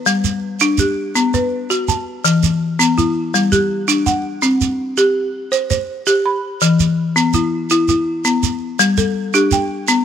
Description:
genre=southern african traditional, mbira-style interlocking cycle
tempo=110 BPM (dotted quarters)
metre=12/8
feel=straight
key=G major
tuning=A4 = 442 Hz
part: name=folk marimba with hard mallets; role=arpeggios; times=0.0-10.0 s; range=E3 to B5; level=-15 LUFS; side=left 2 dB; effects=none
part: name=shekere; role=percussion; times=0.1-10.0 s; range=none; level=-20 LUFS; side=right 8 dB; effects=none
room=light reverb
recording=none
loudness=-14 LUFS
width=side -8 dB against mid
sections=0.1-8.8 A section; 8.8-10.0 B section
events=none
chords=0.1 G; 1.2 B5; 2.2 E5; 3.3 G5; 4.4 C5; 6.6 E5; 8.8 G5

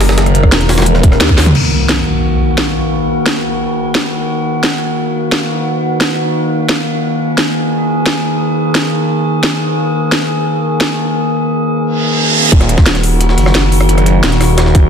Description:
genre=dark technical drum and bass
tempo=175 BPM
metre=4/4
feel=straight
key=Eb minor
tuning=A4 = 440 Hz
part: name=metallic inharmonic drone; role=sustained chords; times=0.0-14.9 s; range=Eb3 to Bb4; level=-15 LUFS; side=left 1 dB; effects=chorus, built-in reverb, sidechain pumping
part: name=phased detuned saw bass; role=bass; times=0.0-1.5, 12.5-14.9 s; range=Eb1 to Eb2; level=-12 LUFS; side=equal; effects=phaser, tube saturation, sidechain pumping
part: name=drum and bass drum kit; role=drums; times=0.0-14.8 s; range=crash cymbal, hi-hat, rim click, snare drum, toms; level=-16 LUFS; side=equal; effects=small room ambience
part: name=jungle sampler-style drum kit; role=drums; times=0.0-1.5, 12.5-14.8 s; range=hi-hat, snare drum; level=-20 LUFS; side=left 1 dB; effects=overdrive, high-pass filter on hats, small room ambience, high-pass filter on snare
part: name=electronic kick drum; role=drums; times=0.4-1.4, 12.5-14.8 s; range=none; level=-8 LUFS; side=equal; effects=small room ambience
part: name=impact and reverse cymbal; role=sound effects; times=1.5-2.9, 12.0-12.5 s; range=none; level=-16 LUFS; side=right 1 dB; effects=none
room=moderate lush hall reverb, RT60 2.1 s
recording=dense, heavily limited modern master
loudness=-10 LUFS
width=side -7 dB against mid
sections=0.0-1.5 A section; 1.5-12.5 B section; 12.5-14.9 A section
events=drop 0.0-1.5, 12.5-14.9; band accent 1.2; drum fill 1.4; impact 1.5-2.9; reverse cymbal 12.0-12.5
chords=0.0 Ebm

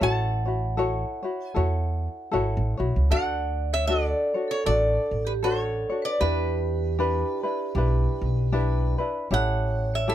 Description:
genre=Hawaiian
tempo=78 BPM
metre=4/4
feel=swing 59% on 8ths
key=A major, D major from 3.1 s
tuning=A4 = 441 Hz
part: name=lap resonator guitar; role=melody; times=0.0-10.1 s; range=B4 to A5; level=-28 LUFS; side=equal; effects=none
part: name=vibraphone with medium hard mallets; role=second line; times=0.0-10.1 s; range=G4 to F#5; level=-31 LUFS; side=right 4 dB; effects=none
part: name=tenor ukulele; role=accompaniment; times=0.0-10.1 s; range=C#4 to C#5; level=-29 LUFS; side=left 3 dB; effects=none
part: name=upright bass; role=bass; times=0.0-10.1 s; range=G#1 to E2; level=-25 LUFS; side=equal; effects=none
room=little or no reverb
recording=close, detailed microphones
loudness=-23 LUFS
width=side -11 dB against mid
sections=0.0-3.1 A section; 3.1-10.1 B section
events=none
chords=0.0 A6; 3.1 Dmaj7; 6.2 Em7; 9.3 A7

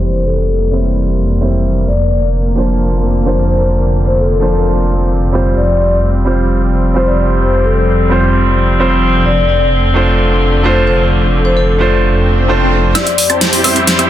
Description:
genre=EDM, festival progressive house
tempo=130 BPM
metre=4/4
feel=straight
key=F major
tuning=A4 = 440 Hz
part: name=vibraphone with soft mallets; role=melody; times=0.0-13.3 s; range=A4 to D5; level=-18 LUFS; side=left 4 dB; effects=tape echo
part: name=clear baby grand piano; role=accompaniment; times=0.0-14.1 s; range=F3 to C5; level=-17 LUFS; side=right 4 dB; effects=tape echo
part: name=warm chamber string section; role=sustained chords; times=0.0-14.1 s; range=F2 to G4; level=-18 LUFS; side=left 2 dB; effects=vintage 12-bit sampler grit
part: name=wide detuned saw bass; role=bass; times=0.0-12.9 s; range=F1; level=-14 LUFS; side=equal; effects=chorus
part: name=sub drop, swell and riser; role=sound effects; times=0.0, 12.2-14.1 s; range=none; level=-20 LUFS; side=left 3 dB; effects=none
part: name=wide unison pluck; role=arpeggios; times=12.9-14.1 s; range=E6 to A6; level=-20 LUFS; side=right 2 dB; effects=tape echo
part: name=big supersaw lead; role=riff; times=12.9-14.1 s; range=C4 to A5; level=-16 LUFS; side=right 1 dB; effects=phaser, low-pass filter, tape echo
part: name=big-room dance drum kit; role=drums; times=13.0-14.1 s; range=hi-hat, snare drum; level=-12 LUFS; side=equal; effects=none
room=light reverb, digital ambience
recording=dense, heavily limited modern master, low-pass filter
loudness=-10 LUFS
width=side -12 dB against mid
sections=0.0-13.0 A section; 13.0-14.1 B section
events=filter sweep 0.0-13.0; swell 12.2-13.0; build-up 13.0-14.1; drum fill 13.0-14.1; filter sweep on supersaw synth 13.0-14.1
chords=0.0 C/F; 1.9 Bbadd9/F; 5.6 Fsus2; 9.3 Dm7/F; 13.0 C/F

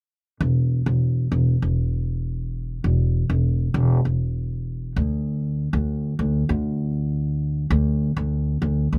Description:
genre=pop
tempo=98 BPM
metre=4/4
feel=straight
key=unclear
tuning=A4 = 442 Hz
part: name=upright bass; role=bass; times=0.4-9.0 s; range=E1 to D2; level=-23 LUFS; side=equal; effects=none
room=little or no reverb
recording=recorded outdoors, with no room sound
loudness=-23 LUFS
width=mono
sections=0.4-9.0 A section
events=none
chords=none

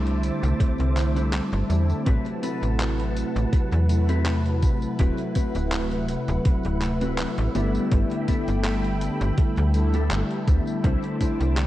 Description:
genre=vaporwave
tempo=82 BPM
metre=4/4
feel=swing 54% on 16ths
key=A dorian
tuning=A4 = 440 Hz
part: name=mellow synth brass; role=accompaniment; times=0.0-11.7 s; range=C3 to B4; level=-26 LUFS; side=equal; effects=wide subtle chorus, tape echo
part: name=soft string machine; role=sustained chords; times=0.0-11.7 s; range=A4 to D6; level=-35 LUFS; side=equal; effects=phaser, ensemble chorus, vintage 12-bit sampler grit
part: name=mellow electric guitar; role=riff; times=0.0-11.7 s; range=B3 to C5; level=-34 LUFS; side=left 2 dB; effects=wide subtle chorus, tape echo
part: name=slap-like FM bass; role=bass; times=0.0-11.7 s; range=D1 to E2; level=-24 LUFS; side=equal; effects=none
part: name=detuned 8-bit digital drum machine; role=drums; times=0.1-11.7 s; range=handclaps, hi-hat, tambourine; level=-34 LUFS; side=equal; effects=none
part: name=electronic kick drum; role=drums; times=0.6-11.4 s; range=none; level=-22 LUFS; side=equal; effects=none
room=digital ambience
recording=echo-heavy mix, cassette tape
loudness=-21 LUFS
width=side -14 dB against mid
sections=0.0-11.7 A section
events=none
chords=0.0 C69; 2.1 Am69; 5.0 D13; 7.5 G69; 10.8 C69

